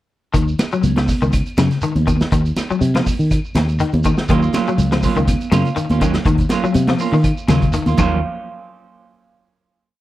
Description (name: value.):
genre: afrobeat.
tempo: 122 BPM.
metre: 4/4.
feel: swing 54% on 16ths.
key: Eb dorian.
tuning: A4 = 438 Hz.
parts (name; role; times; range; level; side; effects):
electric guitar at the edge of break-up; arpeggios; 0.3-8.1 s; Db3 to Gb3; -20 LUFS; left 4 dB; ensemble chorus, slapback echo.
fingered electric bass; bass; 0.3-8.2 s; Db2 to Eb3; -17 LUFS; equal; none.
vintage drum kit; drums; 0.3-8.1 s; crash cymbal, hi-hat, kick drum, snare drum; -21 LUFS; equal; none.
shekere; percussion; 0.3-8.1 s; none; -30 LUFS; right 2 dB; none.
claves; percussion; 0.6-8.1 s; none; -35 LUFS; left 1 dB; none.
congas; percussion; 0.6-8.1 s; none; -24 LUFS; right 2 dB; none.
semi-hollow electric guitar; stabs; 4.3-8.2 s; Gb3 to F4; -22 LUFS; right 6 dB; spring reverb.
room: light reverb.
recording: none.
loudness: -14 LUFS.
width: side -15 dB against mid.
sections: 0.3-8.2 groove; 8.2-10.0 final hit.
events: none.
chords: 0.3 Ebm9; 8.2 N.C..